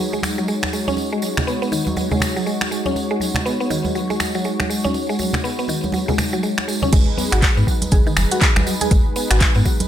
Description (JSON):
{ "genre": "afro house", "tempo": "121 BPM", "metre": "4/4", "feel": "swing 60% on 16ths", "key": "G# minor pentatonic", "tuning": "A4 = 440 Hz", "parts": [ { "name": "warm analog pad", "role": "sustained chords", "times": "0.0-9.9 s", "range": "G#3 to C#5", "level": "-25 LUFS", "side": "left 1 dB", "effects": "chorus, sidechain pumping" }, { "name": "mallet-like synth pluck", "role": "arpeggios", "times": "0.0-9.8 s", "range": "D#3 to G#4", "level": "-23 LUFS", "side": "equal", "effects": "chorus, sidechain pumping, digital delay" }, { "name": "congas", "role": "percussion", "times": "0.1-9.9 s", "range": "none", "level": "-26 LUFS", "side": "right 3 dB", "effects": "none" }, { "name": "tambourine", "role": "percussion", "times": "0.1-9.9 s", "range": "none", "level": "-30 LUFS", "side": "right 3 dB", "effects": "none" }, { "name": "afro-pop drum kit", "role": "drums", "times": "0.2-9.9 s", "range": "crash cymbal, finger snaps, handclaps, hi-hat", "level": "-23 LUFS", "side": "equal", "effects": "studio reverb" }, { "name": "warm sub bass", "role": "bass", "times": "6.9-9.6 s", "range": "F#1 to G#2", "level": "-18 LUFS", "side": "equal", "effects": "sidechain pumping" }, { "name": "electronic kick drum", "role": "drums", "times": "6.9-9.8 s", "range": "none", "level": "-16 LUFS", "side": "equal", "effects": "studio reverb" } ], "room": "light reverb, digital ambience", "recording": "none", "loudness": "-17 LUFS", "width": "side -10 dB against mid", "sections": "0.0-6.9 A section; 6.9-9.9 B section", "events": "drop 6.9-9.9", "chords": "0.0 G#7(no3); 6.9 G#m7" }